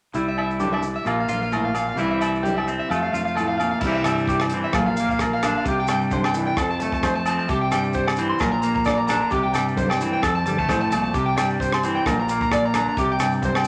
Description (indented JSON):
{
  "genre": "highlife guitar band",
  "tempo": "131 BPM",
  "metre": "4/4",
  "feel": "swing 55% on 16ths",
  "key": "C mixolydian",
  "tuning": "A4 = 439 Hz",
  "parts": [
    { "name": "clean electric guitar", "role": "accompaniment", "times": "0.1-13.7 s", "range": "F2 to F4", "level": "-27 LUFS", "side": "equal", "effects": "none" },
    { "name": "electric guitar at the edge of break-up", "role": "arpeggios", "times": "0.1-13.7 s", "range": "E4 to C6", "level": "-27 LUFS", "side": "equal", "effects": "spring reverb" },
    { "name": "fingered electric bass", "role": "bass", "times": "0.1-13.7 s", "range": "G1 to G2", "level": "-32 LUFS", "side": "equal", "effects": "none" },
    { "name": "congas", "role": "percussion", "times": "0.1-13.5 s", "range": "none", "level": "-35 LUFS", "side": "equal", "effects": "none" },
    { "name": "maracas", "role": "percussion", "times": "0.1-13.7 s", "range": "none", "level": "-46 LUFS", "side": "equal", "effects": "none" },
    { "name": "agogo bells", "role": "percussion", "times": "0.4-13.7 s", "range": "none", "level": "-30 LUFS", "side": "equal", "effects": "none" },
    { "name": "tight funk drum kit", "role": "drums", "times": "3.8-13.7 s", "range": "crash cymbal, hi-hat, kick drum, rim click", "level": "-31 LUFS", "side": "equal", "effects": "none" }
  ],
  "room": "moderate large studio reverb, RT60 1.2 s",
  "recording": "none",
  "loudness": "-22 LUFS",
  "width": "mono",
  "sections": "0.1-3.8 A section; 3.8-13.7 B section",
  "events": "none",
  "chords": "0.1 C; 1.1 Bb5; 2.0 C; 2.9 F; 3.8 C; 4.7 Bb; 5.7 C; 6.6 F; 7.5 C; 8.4 Bb; 9.3 C; 10.2 F; 11.1 C; 12.1 Bb; 13.0 C5"
}